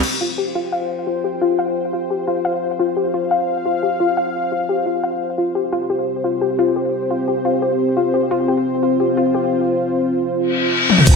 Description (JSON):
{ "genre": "dark technical drum and bass", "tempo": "174 BPM", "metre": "4/4", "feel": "straight", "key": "unclear", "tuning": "A4 = 440 Hz", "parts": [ { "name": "dark analog pad", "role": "sustained chords", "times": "0.0-11.2 s", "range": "C4 to G5", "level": "-20 LUFS", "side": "left 1 dB", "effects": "chorus, sidechain pumping" }, { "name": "drum and bass drum kit", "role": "drums", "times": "0.0-0.1, 10.9-11.1 s", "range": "crash cymbal, hi-hat, toms", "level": "-16 LUFS", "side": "left 2 dB", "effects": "none" }, { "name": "soft round pluck", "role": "arpeggios", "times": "0.2-9.4 s", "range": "F4 to F5", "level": "-20 LUFS", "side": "left 3 dB", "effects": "wide subtle chorus, cassette tape, sidechain pumping, ping-pong delay" }, { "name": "reverse cymbal and sub drop", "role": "sound effects", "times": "10.5-11.2 s", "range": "none", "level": "-16 LUFS", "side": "left 2 dB", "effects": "none" }, { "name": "growl bass", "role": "bass", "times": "11.1-11.2 s", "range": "F1", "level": "-21 LUFS", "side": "right 1 dB", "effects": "chorus, tube saturation, sidechain pumping" }, { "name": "electronic kick drum", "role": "drums", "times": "11.1 s", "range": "none", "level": "-9 LUFS", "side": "equal", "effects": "none" } ], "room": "wet digital room reverb, RT60 1.3 s, digital ambience", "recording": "none", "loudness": "-16 LUFS", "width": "side -4 dB against mid", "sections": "0.0-11.1 A section", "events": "filter sweep on synth pluck 0.0-11.1; reverse cymbal 10.5-11.1; drum fill 10.9", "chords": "0.0 F5; 5.6 C5" }